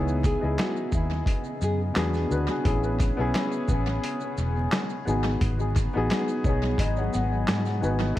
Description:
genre	lo-fi hip hop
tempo	87 BPM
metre	4/4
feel	swing 55% on 16ths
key	unclear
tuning	A4 = 440 Hz
part	dark upright piano	accompaniment	0.0-8.2 s	A3 to G#5	-28 LUFS	left 2 dB	cassette tape, tape echo
part	granular cloud pad	sustained chords	0.0-8.2 s	C#3 to G#4	-36 LUFS	right 1 dB	none
part	vintage muted fingered electric bass	bass	0.0-8.1 s	E1 to G#2	-27 LUFS	equal	none
part	boom bap sampler-style drum kit	drums	0.2-8.2 s	handclaps, hi-hat, kick drum, shaker, snare drum	-27 LUFS	equal	vintage 12-bit sampler grit, tape echo
part	nylon-string guitar	melody	0.3-1.8 s	E4 to G#4	-34 LUFS	left 2 dB	tape echo
room	light reverb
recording	echo-heavy mix, vinyl crackle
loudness	-23 LUFS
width	side -14 dB against mid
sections	0.0-8.2 A section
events	upright piano fill 6.1-8.2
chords	0.0 C#m9; 2.0 E9; 2.6 Amaj9; 5.1 G#m7

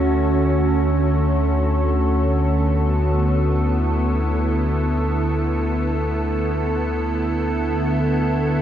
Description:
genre	ambient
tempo	free time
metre	none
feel	none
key	unclear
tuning	A4 = 441 Hz
part	evolving wavetable pad	sustained chords	0.0-8.6 s	D3 to A4	-20 LUFS	right 1 dB	chorus, built-in reverb, shimmer reverb
part	warm sub bass	bass	0.0-8.6 s	D2	-22 LUFS	equal	none
room	wet huge ambient reverb, RT60 9.3 s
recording	in a vast, echoing space, cassette tape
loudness	-18 LUFS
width	side -10 dB against mid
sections	0.0-8.6 A section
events	none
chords	0.0 Dmaj7

